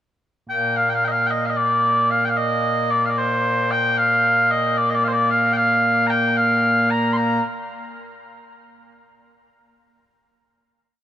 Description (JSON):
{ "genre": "scottish traditional, Scottish pipe music", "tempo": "75 BPM (dotted quarters)", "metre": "6/8", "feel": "straight", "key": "Bb major", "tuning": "A4 = 438 Hz", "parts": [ { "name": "mellow small bagpipes", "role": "solo", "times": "0.5-7.4 s", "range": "Bb2 to C6", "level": "-17 LUFS", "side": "equal", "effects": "none" } ], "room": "moderate huge ambient reverb, RT60 4.2 s", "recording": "none", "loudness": "-17 LUFS", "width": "side -11 dB against mid", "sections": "0.0-0.8 pickup bar; 0.8-7.2 A section; 7.2-8.8 final note", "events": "none", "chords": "none", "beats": "| 0.77 1.56 | 2.37 3.17 | 3.96 4.76 | 5.57 6.37 | 7.17" }